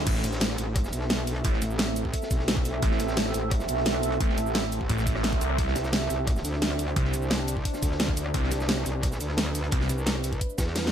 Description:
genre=dark technical drum and bass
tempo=174 BPM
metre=4/4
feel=straight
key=A minor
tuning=A4 = 440 Hz
part: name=deep dark ambient pad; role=sustained chords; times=0.0-10.9 s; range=C4 to E5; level=-32 LUFS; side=right 2 dB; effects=chorus, built-in reverb, sidechain pumping
part: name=metallic wobble bass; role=bass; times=0.0-10.9 s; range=A1 to E2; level=-29 LUFS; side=equal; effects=distortion, chorus
part: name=snarling distorted saw bass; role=bass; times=0.1-9.9 s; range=A1 to C2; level=-27 LUFS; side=equal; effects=distortion, overdrive, sidechain pumping
part: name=crunchy breakbeat drum kit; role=drums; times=0.1-10.9 s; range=hi-hat, snare drum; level=-38 LUFS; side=equal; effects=high-pass filter on hats, small room ambience, high-pass filter on snare, high-pass filter on room
part: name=dubstep drum kit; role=drums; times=0.1-10.9 s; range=cabasa, crash cymbal, hi-hat, rim click, snare drum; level=-29 LUFS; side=equal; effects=small room ambience
part: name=electronic kick drum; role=drums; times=0.1-10.7 s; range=none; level=-28 LUFS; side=equal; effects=small room ambience
room=digital ambience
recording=none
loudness=-24 LUFS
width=side -9 dB against mid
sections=0.0-10.9 A section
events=kick drops out 10.8; drum fill 10.8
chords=0.1 Am; 5.6 Cadd9

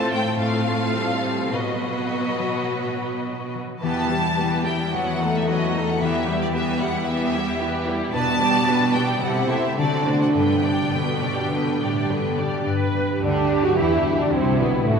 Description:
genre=classical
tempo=103-113 BPM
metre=4/4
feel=rubato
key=E minor, G major from 8.1 s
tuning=A4 = 440 Hz
part: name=rich symphonic violin section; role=melody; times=0.0-15.0 s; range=A3 to A5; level=-27 LUFS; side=left 1 dB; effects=none
part: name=rich studio violin section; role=second line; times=0.0-15.0 s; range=A3 to D5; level=-28 LUFS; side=left 1 dB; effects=none
part: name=rich symphonic viola section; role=accompaniment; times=0.0-15.0 s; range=D3 to B4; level=-25 LUFS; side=right 2 dB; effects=none
part: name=concert harp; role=arpeggios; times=0.0-15.0 s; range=G2 to B4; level=-26 LUFS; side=left 4 dB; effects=none
part: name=rich symphonic cello section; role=bass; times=0.0-15.0 s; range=E2 to F#3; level=-28 LUFS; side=right 3 dB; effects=none
part: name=mellow French horn section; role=sustained chords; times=13.2-15.0 s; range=A3 to F#4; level=-23 LUFS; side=equal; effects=none
part: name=clear symphonic double bass section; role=bass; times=13.2-15.0 s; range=A1 to E2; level=-27 LUFS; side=right 2 dB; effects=none
room=wet cathedral reverb, RT60 4.2 s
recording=recorded in a church or concert hall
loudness=-20 LUFS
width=side -6 dB against mid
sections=0.0-12.7 A section; 12.7-15.0 B section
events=none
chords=0.0 F/A; 1.5 B; 3.8 Em; 4.9 B7/E; 6.0 Em; 8.1 G/B; 9.2 Am7/C; 9.8 D7; 10.4 G

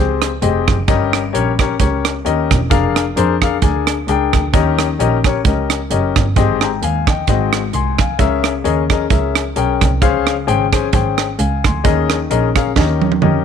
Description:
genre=uptempo gospel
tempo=131 BPM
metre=4/4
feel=swing 56% on 8ths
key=unclear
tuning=A4 = 440 Hz
part: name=clear concert grand piano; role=accompaniment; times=0.0-13.4 s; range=G2 to C6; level=-17 LUFS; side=left 12 dB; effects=none
part: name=rich double bass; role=bass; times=0.0-13.4 s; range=Fb1 to F2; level=-19 LUFS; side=right 2 dB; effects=none
part: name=crisp fusion drum kit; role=drums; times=0.2-13.3 s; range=hi-hat, kick drum, rim click, snare drum, toms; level=-17 LUFS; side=right 4 dB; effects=none
room=light reverb, studio ambience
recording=1960s-style stereo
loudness=-13 LUFS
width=side -8 dB against mid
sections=0.0-13.4 A section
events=drum fill 12.8-13.4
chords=0.0 Abmaj7; 0.9 Eb7/G; 2.7 Bb7/F; 4.5 Eb7; 6.4 Abmaj7; 7.3 Ab7; 8.2 Dbm6; 10.0 Dbmaj7; 11.8 Eb7sus4; 12.8 Eb7

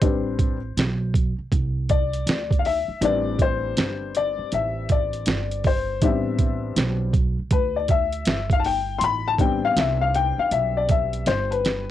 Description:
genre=hip hop, jazz-hop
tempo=80 BPM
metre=4/4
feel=swing 64% on 16ths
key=A minor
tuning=A4 = 440 Hz
part: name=dark upright piano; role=accompaniment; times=0.0-11.9 s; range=G3 to C6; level=-23 LUFS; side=left 6 dB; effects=cassette tape
part: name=upright bass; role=bass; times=0.0-11.9 s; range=G1 to D2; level=-27 LUFS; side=right 2 dB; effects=tube saturation
part: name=boom bap sampler-style drum kit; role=drums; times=0.0-11.9 s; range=hi-hat, kick drum, snare drum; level=-22 LUFS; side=right 2 dB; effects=cassette tape
room=light reverb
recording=home recording on cassette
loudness=-20 LUFS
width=side -12 dB against mid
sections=0.0-11.9 A section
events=upright piano solo 0.0-11.9; drum fill 11.3-11.9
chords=0.0 Am11

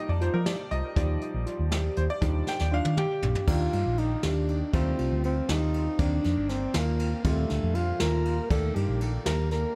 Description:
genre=progressive instrumental, band music in an uneven meter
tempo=239 BPM (eighths)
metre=5/8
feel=straight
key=Eb lydian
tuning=A4 = 440 Hz
part: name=bright concert grand piano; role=accompaniment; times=0.0-9.7 s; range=Bb2 to G5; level=-38 LUFS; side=equal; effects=dub echo
part: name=mellow tine electric piano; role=arpeggios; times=0.0-9.6 s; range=C4 to G4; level=-38 LUFS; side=equal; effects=phaser, dub echo
part: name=hollow-body short-scale fingered electric bass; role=bass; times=0.1-9.6 s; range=G1 to F3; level=-30 LUFS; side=equal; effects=none
part: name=jazz brush drum kit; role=drums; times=0.2-9.6 s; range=crash cymbal, hi-hat, kick drum, ride cymbal, snare drum, toms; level=-34 LUFS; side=equal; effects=none
part: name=breathy tenor saxophone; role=melody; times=2.7-9.8 s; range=A3 to Bb4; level=-33 LUFS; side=equal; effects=dub echo
part: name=trombone with bucket mute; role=second line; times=7.8-9.8 s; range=F3 to Bb3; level=-40 LUFS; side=equal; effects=dub echo
room=small room ambience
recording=echo-heavy mix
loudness=-27 LUFS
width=mono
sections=0.0-3.5 A section; 3.5-9.8 B section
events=grand piano solo 0.0-3.5; drum fill 2.5-3.5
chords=0.0 F7sus4; 1.0 Ebmaj7; 3.5 Bbadd11; 4.7 Fadd9; 6.0 Bb; 7.2 Gm7; 8.5 Ebmaj7#11

